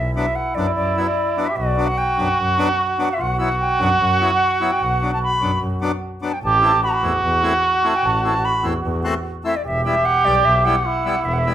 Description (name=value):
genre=klezmer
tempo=149 BPM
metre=4/4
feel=straight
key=unclear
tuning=A4 = 443 Hz
part: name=bright reedy silver concert flute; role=melody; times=0.0-11.5 s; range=D5 to B5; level=-22 LUFS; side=left 1 dB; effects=plate reverb
part: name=trombone with metal mute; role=second line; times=0.0-11.5 s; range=E4 to G4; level=-19 LUFS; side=right 3 dB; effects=tape echo
part: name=warm double bass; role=bass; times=0.0-11.5 s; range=E1 to F#2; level=-24 LUFS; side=equal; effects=none
part: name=accordion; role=accompaniment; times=0.2-11.5 s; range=F#3 to G4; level=-25 LUFS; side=left 4 dB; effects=plate reverb
room=wet studio reverb, RT60 0.6 s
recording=rough home demo mix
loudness=-16 LUFS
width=side -11 dB against mid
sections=0.0-11.5 A section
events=none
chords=0.0 Bm; 6.4 Am; 9.7 Em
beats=0.36 0.77 1.17 | 1.57 1.98 2.38 2.79 | 3.19 3.60 4.00 4.40 | 4.81 5.21 5.62 6.02 | 6.42 6.83 7.23 7.63 | 8.04 8.44 8.84 9.25 | 9.65 10.05 10.46 10.86 | 11.26